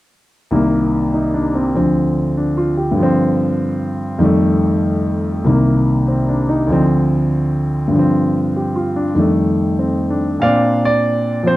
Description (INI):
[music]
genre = solo jazz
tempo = 97 BPM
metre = 4/4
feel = swing 68% on 8ths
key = Bb major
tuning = A4 = 439 Hz
[part]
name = warm grand piano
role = solo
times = 0.5-11.6 s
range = C2 to F5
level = -14 LUFS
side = equal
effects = none
[sound]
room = light reverb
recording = dry, close 1970s-style studio recording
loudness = -14 LUFS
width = side -16 dB against mid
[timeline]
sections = 0.5-10.4 A section; 10.4-11.6 B section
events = none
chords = 0.5 Cm7; 1.7 Dm7; 3.0 G7sus4; 4.2 F9; 5.5 Cm7; 6.7 Dm7; 7.9 G7sus4; 9.2 F9; 10.4 Bbadd9